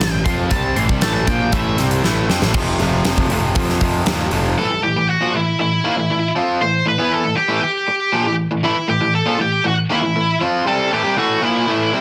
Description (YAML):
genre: quiet-loud alternative rock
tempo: 118 BPM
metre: 4/4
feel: straight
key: A minor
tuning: A4 = 441 Hz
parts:
  - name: octave-fuzz lead guitar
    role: melody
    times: 0.0-12.0 s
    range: E4 to C6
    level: -22 LUFS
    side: equal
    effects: distortion
  - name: crunchy overdriven guitar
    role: riff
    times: 0.0-4.6 s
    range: F2 to F4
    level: -26 LUFS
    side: equal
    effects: none
  - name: overdriven electric guitar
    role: riff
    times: 0.0-12.0 s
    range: F2 to F4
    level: -22 LUFS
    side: equal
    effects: none
  - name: fuzz picked electric bass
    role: bass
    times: 0.0-4.5 s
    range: F1 to F2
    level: -24 LUFS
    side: equal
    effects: overdrive
  - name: huge arena drum kit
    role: drums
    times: 0.0-4.4 s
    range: crash cymbal, hi-hat, kick drum, snare drum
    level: -23 LUFS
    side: equal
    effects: none
room: light reverb, small room ambience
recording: dense, heavily limited modern master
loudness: -18 LUFS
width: mono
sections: 0.0-2.5 A section; 2.5-4.6 B section; 4.6-12.0 C section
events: lead electric guitar solo 0.0-2.5; drum fill 2.0-2.5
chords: 0.0 Am; 2.5 F5; 4.6 Am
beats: 0.00 | 0.51 1.02 1.53 2.04 | 2.55 3.06 3.56 4.07 | 4.58 5.09 5.59 6.10 | 6.61 7.11 7.62 8.13 | 8.63 9.14 9.65 10.15 | 10.66 11.17 11.67